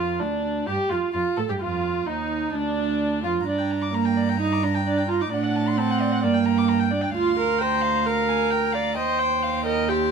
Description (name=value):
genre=quick classical-period movement for string quartet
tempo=130 BPM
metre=4/4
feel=straight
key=unclear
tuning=A4 = 440 Hz
part: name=warm violin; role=melody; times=0.0-10.1 s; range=D4 to C6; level=-32 LUFS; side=left 10 dB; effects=none
part: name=dark violin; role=second line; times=0.0-10.1 s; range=D4 to D6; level=-29 LUFS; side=left 2 dB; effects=none
part: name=warm viola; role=accompaniment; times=0.0-10.1 s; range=Bb3 to D5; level=-23 LUFS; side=right 4 dB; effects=none
part: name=dark cello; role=bass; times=0.0-10.1 s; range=D2 to A2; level=-28 LUFS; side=right 4 dB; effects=none
room=light reverb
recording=minimal, uncompressed stereo recording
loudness=-21 LUFS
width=side -6 dB against mid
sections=0.0-10.1 A section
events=none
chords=0.0 Dmadd11; 1.6 Ebsus2; 2.6 Dm; 3.5 Gm; 5.3 D7/A; 6.2 Gm; 7.2 Bb/D; 9.0 Eb